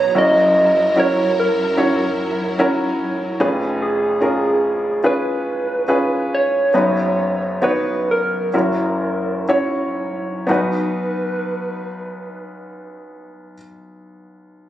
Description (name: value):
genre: pop ballad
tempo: 58-74 BPM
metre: 4/4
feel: straight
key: B major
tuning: A4 = 439 Hz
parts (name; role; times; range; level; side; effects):
- soft struck synth lead; melody; 0.0-13.6 s; G#4 to D#5; -19 LUFS; right 1 dB; chorus
- clear upright piano; accompaniment; 0.0-14.7 s; E#1 to C#5; -19 LUFS; equal; none
- warm symphonic string section; sustained chords; 0.0-3.4 s; F#2 to A#5; -25 LUFS; equal; none
- downlifter; sound effects; 0.0-3.4 s; none; barely audible; none; none
room: light reverb, small room ambience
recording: recorded on a phone in the room, club reverb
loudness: -16 LUFS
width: side -13 dB against mid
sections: 0.0-10.5 A section; 10.5-14.6 B section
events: slowing down 3.4-10.5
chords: 0.2 F#7; 3.4 C#7/E#; 6.7 B/F#; 8.5 F#7; 10.5 B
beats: | 0.15 0.96 1.77 2.59 | 3.40 4.21 5.03 5.87 | 6.73 7.62 8.53 9.49 | 10.49 11.52 12.54 13.57